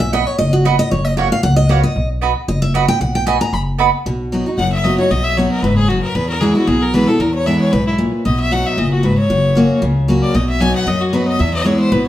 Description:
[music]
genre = bluegrass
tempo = 229 BPM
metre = 4/4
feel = straight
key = B major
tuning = A4 = 440 Hz
[part]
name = picked steel-string acoustic guitar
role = accompaniment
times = 0.0-12.1 s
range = E2 to B5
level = -16 LUFS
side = equal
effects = none
[part]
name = upright bass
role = bass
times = 0.0-12.1 s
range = F#1 to F#2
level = -18 LUFS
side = equal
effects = none
[part]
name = mandolin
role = stabs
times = 0.1-3.9 s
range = A#3 to B5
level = -17 LUFS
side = right 8 dB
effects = none
[part]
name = bright fiddle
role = melody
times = 4.6-12.1 s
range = E4 to G#5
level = -19 LUFS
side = left 2 dB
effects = plate reverb, tape echo
[sound]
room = wet studio reverb, RT60 0.8 s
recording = heard from further back in the room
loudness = -13 LUFS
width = side -12 dB against mid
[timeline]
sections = 0.0-4.1 A section; 4.1-12.1 B section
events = steel-string acoustic guitar solo 0.0-4.1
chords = 0.0 B; 0.9 F#; 2.0 B; 6.2 E; 8.2 B; 9.3 F#; 10.3 B; 11.4 E

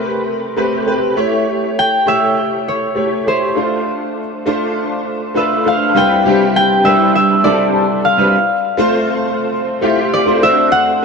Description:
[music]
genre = pop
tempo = 100 BPM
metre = 4/4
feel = straight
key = C major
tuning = A4 = 441 Hz
[part]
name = concert harp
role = melody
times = 0.0-11.0 s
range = C5 to G5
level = -14 LUFS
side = equal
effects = none
[part]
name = clear baby grand piano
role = accompaniment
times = 0.0-11.0 s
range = G3 to C#5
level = -15 LUFS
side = equal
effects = ensemble chorus
[sound]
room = moderate lush hall reverb, RT60 2.7 s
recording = dark, warm production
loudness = -12 LUFS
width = side -4 dB against mid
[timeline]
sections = 0.0-6.0 A section; 6.0-11.0 B section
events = none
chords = 0.0 Am9; 1.2 A7; 3.6 Dm7; 6.0 Cmaj9; 8.3 Fmaj7; 10.4 D7

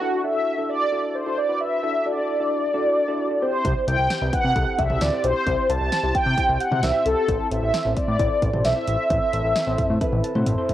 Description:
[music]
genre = synth-pop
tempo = 132 BPM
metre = 4/4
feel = straight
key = unclear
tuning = A4 = 439 Hz
[part]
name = mellow synth brass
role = melody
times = 0.0-10.4 s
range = F#4 to A5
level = -22 LUFS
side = equal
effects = chorus, cassette tape, tape echo
[part]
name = soft electric-piano-like synth keys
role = accompaniment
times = 0.0-10.7 s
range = C4 to A5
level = -28 LUFS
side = equal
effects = chorus, phaser, cassette tape
[part]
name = fat analog bass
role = bass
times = 3.6-10.7 s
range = A1 to C3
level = -24 LUFS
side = equal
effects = none
[part]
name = house drum kit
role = drums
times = 3.6-10.7 s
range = hi-hat, kick drum, snare drum, toms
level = -27 LUFS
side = equal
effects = cassette tape
[sound]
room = moderate spring reverb, RT60 1.7 s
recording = home recording on cassette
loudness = -20 LUFS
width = side -12 dB against mid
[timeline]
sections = 0.0-10.7 A section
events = drum fill 10.0-10.7; synth keys fill 10.0-10.7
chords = 0.0 Dadd9; 3.4 C; 7.3 Am

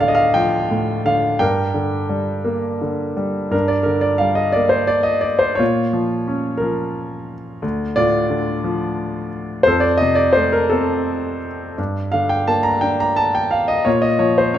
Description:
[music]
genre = classical, lyrical solo piano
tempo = 58 BPM (dotted quarters)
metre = 6/8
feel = rubato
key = G minor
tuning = A4 = 439 Hz
[part]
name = warm grand piano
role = solo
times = 0.0-14.6 s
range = D2 to Bb5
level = -16 LUFS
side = equal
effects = none
[sound]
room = moderate recital hall reverb, RT60 1.4 s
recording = none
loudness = -16 LUFS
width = side -11 dB against mid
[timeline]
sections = 0.0-3.5 A section; 3.5-14.6 B section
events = none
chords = 0.0 Dm; 1.4 Gm; 5.6 Bbm; 7.6 Dm; 9.7 F; 11.8 Gm; 13.9 Bbm

